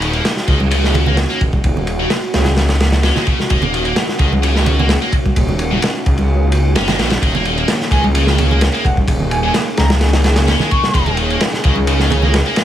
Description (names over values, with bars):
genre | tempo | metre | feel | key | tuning
breakbeat, breaks | 129 BPM | 4/4 | straight | Eb minor pentatonic | A4 = 440 Hz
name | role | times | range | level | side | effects
warbly tape-like pad | sustained chords | 0.0-12.6 s | Eb3 to Ab4 | -22 LUFS | equal | chorus, built-in reverb, sidechain pumping
scooped high-gain guitar | riff | 0.0-12.6 s | Db3 to Db4 | -21 LUFS | left 1 dB | distortion, dub echo
detuned saw bass | bass | 0.0-12.4 s | Eb1 to Db2 | -16 LUFS | equal | none
crunchy breakbeat drum kit | drums | 0.0-12.6 s | kick drum, ride cymbal, snare drum | -17 LUFS | equal | none
congas | percussion | 0.6-12.3 s | none | -22 LUFS | right 3 dB | none
breathy bright concert flute | melody | 7.9-11.2 s | Gb5 to Db6 | -23 LUFS | equal | small speaker sound, vintage 12-bit sampler grit, dub echo
room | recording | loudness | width
light reverb | small room ambience | -12 LUFS | side -11 dB against mid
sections
0.0-12.6 A section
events
none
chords
0.0 Ebm7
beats
0.25 0.71 1.18 | 1.64 2.11 2.57 3.04 | 3.50 3.97 4.43 4.90 | 5.36 5.83 6.29 6.76 | 7.22 7.69 8.15 8.62 | 9.09 9.55 10.02 10.48 | 10.95 11.41 11.88 12.34